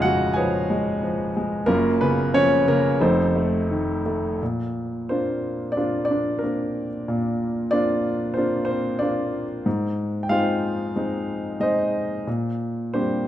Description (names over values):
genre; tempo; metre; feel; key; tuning
classical, lyrical solo piano; 92 BPM; 4/4; rubato; Bb mixolydian from 4.4 s; A4 = 440 Hz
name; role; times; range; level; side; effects
warm grand piano; solo; 0.0-13.3 s; E#1 to G#5; -21 LUFS; equal; none
room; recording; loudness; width
moderate recital hall reverb, RT60 1.6 s; dark, warm production; -21 LUFS; side -12 dB against mid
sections
0.0-4.4 A section; 4.4-13.3 B section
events
none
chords
0.0 C#7/E#; 1.7 F#maj7; 3.0 F7; 4.4 Bbadd9; 9.7 Ab; 12.3 Bb6